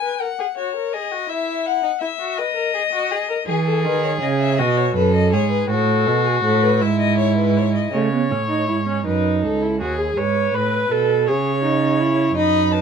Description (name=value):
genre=classical, baroque-style fugue for string quartet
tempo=54 BPM (dotted quarters)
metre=6/8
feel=straight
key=E major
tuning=A4 = 437 Hz
part: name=rich violin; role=melody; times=0.0-7.9, 12.4-12.8 s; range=G#4 to B5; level=-22 LUFS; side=left 8 dB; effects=none
part: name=rich violin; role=second line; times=0.0-12.8 s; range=D#4 to D#5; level=-23 LUFS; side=left 4 dB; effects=none
part: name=rich cello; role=bass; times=3.5-12.8 s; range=C#2 to E3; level=-20 LUFS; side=right 5 dB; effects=none
part: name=warm viola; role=accompaniment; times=7.9-12.8 s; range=A3 to C#5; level=-20 LUFS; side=right 4 dB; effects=none
room=light reverb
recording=minimal, uncompressed stereo recording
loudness=-17 LUFS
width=side -6 dB against mid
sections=0.0-7.9 A section; 7.9-12.8 B section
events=none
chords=0.2 F#5; 1.3 Esus2; 2.4 N.C.; 3.5 E; 4.6 B; 5.7 B5/A; 6.8 E/G#; 7.9 A; 9.1 D#dim; 10.2 G#m; 11.3 C#m